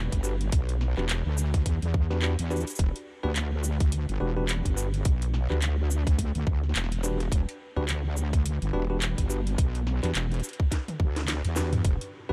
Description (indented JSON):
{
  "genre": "glitch hop",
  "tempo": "106 BPM",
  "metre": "4/4",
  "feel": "swing 58% on 16ths",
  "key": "E minor",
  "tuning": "A4 = 439 Hz",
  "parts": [
    { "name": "wobble bass", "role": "bass", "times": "0.0-12.3 s", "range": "E1 to E2", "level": "-30 LUFS", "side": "equal", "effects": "chorus, overdrive" },
    { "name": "drum and bass drum kit", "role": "drums", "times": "0.1-12.1 s", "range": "handclaps, hi-hat, shaker, snare drum, toms", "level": "-36 LUFS", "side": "equal", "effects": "none" },
    { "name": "electronic kick drum", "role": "drums", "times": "0.1-12.0 s", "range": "none", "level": "-27 LUFS", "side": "equal", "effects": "none" },
    { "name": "bell-like tine electric piano", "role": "stabs", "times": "0.2-12.3 s", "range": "D4 to B4", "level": "-39 LUFS", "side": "equal", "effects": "sidechain pumping, tape echo" }
  ],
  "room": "digital ambience",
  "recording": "none",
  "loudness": "-28 LUFS",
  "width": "mono",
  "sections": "0.0-12.3 A section",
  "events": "drum fill 10.7-11.8; kick drops out 11.3-11.8",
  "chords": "0.0 Em9"
}